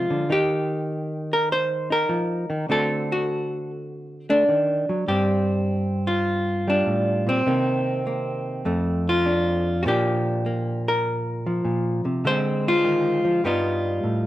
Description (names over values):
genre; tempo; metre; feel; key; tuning
solo jazz; 100 BPM; 4/4; swing 68% on 8ths; Bb major; A4 = 439 Hz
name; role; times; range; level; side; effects
hollow-body jazz guitar; solo; 0.0-14.3 s; F2 to C5; -21 LUFS; equal; none
room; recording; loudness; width
light reverb; none; -20 LUFS; side -14 dB against mid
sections
0.0-14.3 A section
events
none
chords
0.3 Ebadd9; 2.7 D7; 5.1 G9sus4; 7.5 Cm7; 8.7 F6; 9.9 Bb; 12.2 Dm7b5; 13.4 G7b13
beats
| 0.30 0.90 1.49 2.09 | 2.69 3.29 3.88 4.48 | 5.08 5.67 6.27 6.87 | 7.47 8.06 8.66 9.26 | 9.86 10.45 11.05 11.65 | 12.25 12.85 13.44 14.04